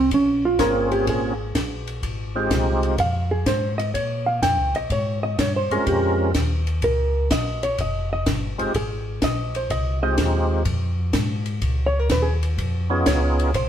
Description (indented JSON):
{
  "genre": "soul jazz organ trio",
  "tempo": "125 BPM",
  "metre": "4/4",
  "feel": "swing 68% on 8ths",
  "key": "F minor",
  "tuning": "A4 = 445 Hz",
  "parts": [
    { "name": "hollow-body jazz guitar", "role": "accompaniment", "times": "0.0-13.7 s", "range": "C4 to G5", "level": "-23 LUFS", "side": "right 1 dB", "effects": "none" },
    { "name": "mellow tonewheel organ", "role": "bass", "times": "0.0-13.7 s", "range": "F1 to Bb2", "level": "-24 LUFS", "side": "equal", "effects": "chorus vibrato, slow rotary speaker" },
    { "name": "compact cocktail drum kit", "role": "drums", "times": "0.1-13.7 s", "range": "hi-hat, kick drum, ride cymbal, snare drum", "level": "-26 LUFS", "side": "left 1 dB", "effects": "none" },
    { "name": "percussive tonewheel organ", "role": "melody", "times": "0.6-13.5 s", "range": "Ab3 to Bb4", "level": "-23 LUFS", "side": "right 1 dB", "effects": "slow rotary speaker, overdrive, chorus vibrato" }
  ],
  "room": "moderate stone room reverb, RT60 1.1 s",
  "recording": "band playing live in one room",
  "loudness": "-20 LUFS",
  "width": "side -10 dB against mid",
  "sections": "0.0-13.7 A section",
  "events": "hollow-body jazz guitar solo 0.0-13.7",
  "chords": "0.1 Bbm7; 2.0 Fm7; 3.9 Bbm7; 7.8 Fm7; 11.6 Db7"
}